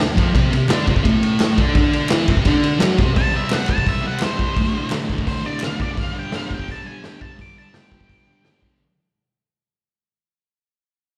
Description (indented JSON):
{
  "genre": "garage rock duo or trio",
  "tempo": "170 BPM",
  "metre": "4/4",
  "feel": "straight",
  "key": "unclear",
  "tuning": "A4 = 441 Hz",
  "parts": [
    { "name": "thick fuzz guitar", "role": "riff", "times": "0.0-8.8 s", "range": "D2 to F#4", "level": "-22 LUFS", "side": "equal", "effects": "distortion" },
    { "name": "raw garage drum kit", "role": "drums", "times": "0.0-8.7 s", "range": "hi-hat, kick drum, ride cymbal, snare drum", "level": "-22 LUFS", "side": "equal", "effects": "none" },
    { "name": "group handclap", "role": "percussion", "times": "0.7-5.7 s", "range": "none", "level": "-36 LUFS", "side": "equal", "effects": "none" },
    { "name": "octave-fuzz lead guitar", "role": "melody", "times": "3.2-8.8 s", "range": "C5 to D6", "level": "-30 LUFS", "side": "equal", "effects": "distortion" }
  ],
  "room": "light reverb, studio reverb",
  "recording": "live gig heard through the venue's PA, club reverb",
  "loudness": "-19 LUFS",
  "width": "mono",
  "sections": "0.0-3.2 A section; 3.2-8.8 B section",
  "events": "fade-out 3.2-8.8",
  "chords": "0.3 Amadd11; 3.2 C5; 4.6 D5; 6.0 G5"
}